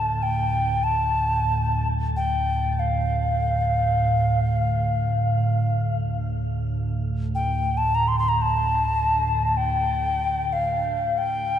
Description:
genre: world meditative, free-time meditation music.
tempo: free time.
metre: none.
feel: none.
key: D minor.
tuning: A4 = 441 Hz.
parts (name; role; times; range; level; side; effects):
bright alto ocarina; melody; 0.0-11.6 s; F5 to C6; -23 LUFS; left 1 dB; shimmer reverb, ping-pong delay.
glassy FM pad; drone; 0.0-11.6 s; D2 to A2; -24 LUFS; right 1 dB; ensemble chorus, built-in reverb.
room: moderate lush hall reverb, RT60 2.0 s, small room ambience.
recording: dark, warm production.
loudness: -21 LUFS.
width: side -9 dB against mid.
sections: 0.0-11.6 A section.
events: none.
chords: none.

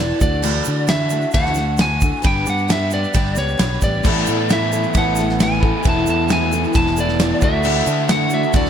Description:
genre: folk rock and heartland rock.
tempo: 133 BPM.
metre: 4/4.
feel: straight.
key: unclear.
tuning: A4 = 439 Hz.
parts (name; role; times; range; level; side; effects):
lightly driven lead guitar; melody; 0.0-8.7 s; C#5 to A5; -22 LUFS; right 2 dB; slapback echo.
picked twelve-string acoustic guitar; accompaniment; 0.0-8.7 s; G2 to A4; -23 LUFS; left 4 dB; none.
fingered electric bass; bass; 0.0-8.7 s; E1 to D3; -22 LUFS; equal; none.
damped 70s drum kit; drums; 0.2-8.7 s; crash cymbal, kick drum, ride cymbal, snare drum; -20 LUFS; equal; none.
tube shaker; percussion; 0.2-8.6 s; none; -35 LUFS; right 12 dB; none.
crunchy overdriven guitar; riff; 4.0-8.7 s; E2 to F#4; -21 LUFS; equal; none.
room: light reverb.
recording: none.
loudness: -15 LUFS.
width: side -8 dB against mid.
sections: 0.0-8.7 A section.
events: none.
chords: 0.2 Dadd9; 2.2 G; 4.0 Asus2; 5.8 Esus4; 7.4 Dadd9.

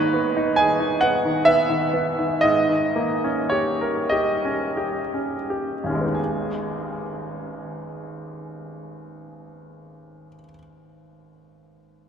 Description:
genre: classical, romantic nocturne for solo piano.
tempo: 26-47 BPM (dotted quarters).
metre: 12/8.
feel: rubato.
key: G# minor.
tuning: A4 = 442 Hz.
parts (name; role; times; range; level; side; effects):
bright grand piano; solo; 0.0-12.1 s; G#1 to G#5; -20 LUFS; right 1 dB; none.
room: wet cathedral reverb, RT60 6.9 s.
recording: in a vast, echoing space.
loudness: -20 LUFS.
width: side -7 dB against mid.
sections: 0.0-6.2 A section; 6.2-12.1 B section.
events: slowing down 0.0-6.2.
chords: 0.0 G#m; 2.4 D#7/G#; 6.2 G#m.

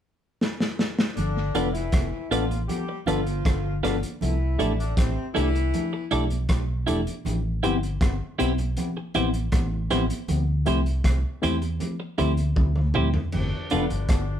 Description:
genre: lovers rock reggae.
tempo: 79 BPM.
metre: 4/4.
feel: straight.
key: unclear.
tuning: A4 = 439 Hz.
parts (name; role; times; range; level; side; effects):
crunchy breakbeat drum kit; drums; 0.4-14.3 s; crash cymbal, hi-hat, kick drum, rim click, snare drum, toms; -26 LUFS; equal; tape echo.
warm horn section; second line; 1.2-6.1, 13.3-14.4 s; B2 to G4; -32 LUFS; left 3 dB; none.
vintage muted fingered electric bass; bass; 1.2-14.4 s; E1 to E2; -26 LUFS; equal; none.
congas; percussion; 1.2-13.9 s; none; -35 LUFS; right 1 dB; tape echo.
tine electric piano; accompaniment; 1.5-13.9 s; A3 to A4; -30 LUFS; left 3 dB; tape echo.
twelve-string electric guitar; stabs; 1.6-13.8 s; D4 to D5; -28 LUFS; right 3 dB; none.
room: moderate studio reverb, RT60 0.7 s.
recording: band playing live in one room.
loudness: -22 LUFS.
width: side -10 dB against mid.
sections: 0.0-1.2 A section; 1.2-13.3 B section; 13.3-14.4 C section.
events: drum fill 0.4-1.2, 12.6-13.3.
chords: 0.0 N.C.; 1.2 G7; 4.2 C69; 7.2 Am7; 10.3 D9sus4; 13.3 G7.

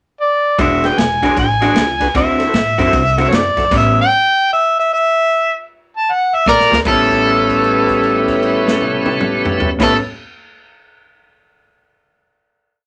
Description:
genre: electric blues shuffle.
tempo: 153 BPM.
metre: 4/4.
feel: swing 63% on 8ths.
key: A mixolydian.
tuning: A4 = 439 Hz.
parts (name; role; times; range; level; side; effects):
warm harmonica; melody; 0.2-6.7 s; C#5 to A5; -16 LUFS; equal; overdrive.
electric guitar through a small old amp; riff; 0.6-4.0, 6.9-10.0 s; A2 to F#4; -20 LUFS; equal; none.
upright bass; bass; 0.6-4.0, 6.5-9.9 s; E1 to A2; -25 LUFS; equal; none.
natural country drum kit; drums; 0.6-3.8, 6.5-9.9 s; crash cymbal, kick drum, ride cymbal, snare drum, toms; -23 LUFS; equal; none.
bright tonewheel organ; accompaniment; 0.8-3.7, 6.7-9.9 s; D4 to D5; -23 LUFS; equal; slow rotary speaker, overdrive.
overdriven slide guitar; second line; 6.5-10.0 s; A4 to Bb4; -18 LUFS; equal; none.
room: moderate small room reverb, RT60 0.5 s.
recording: none.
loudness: -14 LUFS.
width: mono.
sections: 0.0-0.6 pickup bar; 0.6-6.9 head; 6.9-10.0 final chord.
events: drum fill 6.5-6.9; held note 6.9-9.8.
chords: 0.0 N.C.; 0.6 E9; 2.2 D9; 3.7 A9; 6.5 Bb9; 6.9 A9.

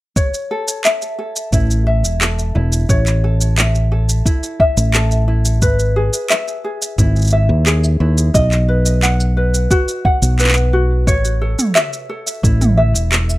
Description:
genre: folktronica.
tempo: 88 BPM.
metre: 4/4.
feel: straight.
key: A lydian.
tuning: A4 = 440 Hz.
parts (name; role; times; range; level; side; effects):
ukulele; arpeggios; 0.2-13.4 s; E4 to F#5; -20 LUFS; equal; tape echo, plate reverb.
electronic kick drum; drums; 0.2-12.6 s; none; -15 LUFS; equal; small room reverb.
organic electronic drum kit; drums; 0.2-13.4 s; handclaps, shaker, toms; -18 LUFS; right 1 dB; overdrive, small room reverb.
fingered electric bass; bass; 1.5-13.4 s; E1 to D#2; -14 LUFS; equal; none.
room: light reverb.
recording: none.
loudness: -13 LUFS.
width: side -18 dB against mid.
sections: 0.2-13.4 A section.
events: none.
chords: 0.2 A; 5.6 E/G#; 8.3 B; 11.1 A.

